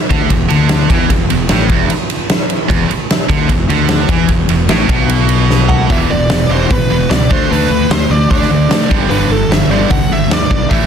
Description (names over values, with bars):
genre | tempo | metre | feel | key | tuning
hard rock | 150 BPM | 4/4 | straight | E minor | A4 = 444 Hz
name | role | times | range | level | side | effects
heavy high-gain guitar | riff | 0.1-10.9 s | E2 to D4 | -17 LUFS | right 11 dB | distortion
sludgy distorted guitar | riff | 0.1-10.9 s | E2 to D4 | -17 LUFS | left 11 dB | overdrive
fuzz fingered electric bass | bass | 0.1-10.9 s | E1 to D3 | -17 LUFS | equal | overdrive
huge arena drum kit | drums | 0.1-10.8 s | hi-hat, kick drum, ride cymbal, snare drum, toms | -14 LUFS | equal | none
bluesy overdriven lead guitar | melody | 5.7-10.9 s | A4 to F#5 | -18 LUFS | right 1 dB | distortion
room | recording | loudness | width
light reverb, studio reverb | dense, heavily limited modern master | -10 LUFS | side -8 dB against mid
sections
0.0-5.9 A section; 5.9-10.9 B section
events
drum fill 5.5-5.9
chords
0.0 E5; 7.3 D5; 8.9 G5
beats
0.30 0.70 | 1.09 1.49 1.89 2.29 | 2.69 3.09 3.49 3.89 | 4.29 4.69 5.09 5.49 | 5.89 6.29 6.69 7.09 | 7.50 7.90 8.30 8.70 | 9.10 9.50 9.90 10.30 | 10.70